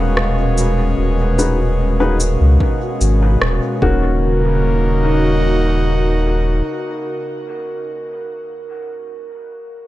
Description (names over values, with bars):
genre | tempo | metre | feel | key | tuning
ambient dub | 74 BPM | 4/4 | straight | Eb minor | A4 = 439 Hz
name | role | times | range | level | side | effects
airy breathy pad | sustained chords | 0.0-8.0 s | Cb3 to Gb4 | -20 LUFS | equal | chorus
vibraphone with medium mallets | arpeggios | 0.0-9.9 s | Bb4 to F5 | -25 LUFS | right 2 dB | dub echo
warm sub bass | bass | 0.0-6.6 s | Eb1 to Db2 | -16 LUFS | equal | none
bubbling stepped-filter texture | texture | 0.0-4.2 s | Gb4 | -30 LUFS | equal | chorus, built-in reverb
electronic rim click and shaker | drums | 0.2-3.6 s | none | -22 LUFS | equal | dub echo
dark upright piano | stabs | 1.4-7.2 s | Bb3 to Cb5 | -25 LUFS | left 3 dB | dub echo
electronic kick drum | drums | 2.6-4.0 s | none | -18 LUFS | equal | none
room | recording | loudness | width
digital ambience | none | -14 LUFS | side -15 dB against mid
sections
0.0-4.2 A section; 4.2-7.5 B section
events
none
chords
0.0 Abm7/Eb; 3.8 Ebm7